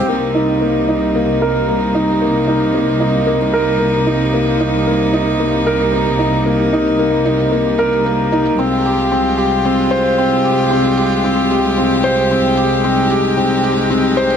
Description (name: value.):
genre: piano and strings electronica.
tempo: 113 BPM.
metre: 4/4.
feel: straight.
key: C minor.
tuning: A4 = 440 Hz.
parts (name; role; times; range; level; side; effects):
rich string quartet; sustained chords; 0.0-14.4 s; C3 to G4; -19 LUFS; right 1 dB; none.
warm concert grand piano; riff; 0.0-14.4 s; Bb3 to C5; -14 LUFS; equal; low-pass filter, tape echo.
rich symphonic cello section; bass; 0.0-14.4 s; C2; -21 LUFS; equal; none.
shaker; drums; 0.1-14.4 s; none; -41 LUFS; right 8 dB; none.
room: moderate lush hall reverb, RT60 2.0 s.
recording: none.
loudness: -13 LUFS.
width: side -8 dB against mid.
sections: 0.1-14.4 A section.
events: filter sweep on grand piano 0.1-14.4.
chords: 0.1 Cm7; 8.6 Fmadd9/C.